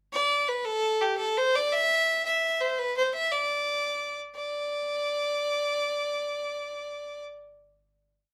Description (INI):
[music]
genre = celtic folk, Celtic jig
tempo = 113 BPM (dotted quarters)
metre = 6/8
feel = straight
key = unclear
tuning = A4 = 439 Hz
[part]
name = clear fiddle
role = solo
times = 0.1-7.2 s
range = G4 to E5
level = -28 LUFS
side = equal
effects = none
[sound]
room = wet small room reverb, RT60 0.6 s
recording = band playing live in one room, faint mains hum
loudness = -28 LUFS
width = mono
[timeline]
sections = 0.1-4.4 A section; 4.4-6.5 final note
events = none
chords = none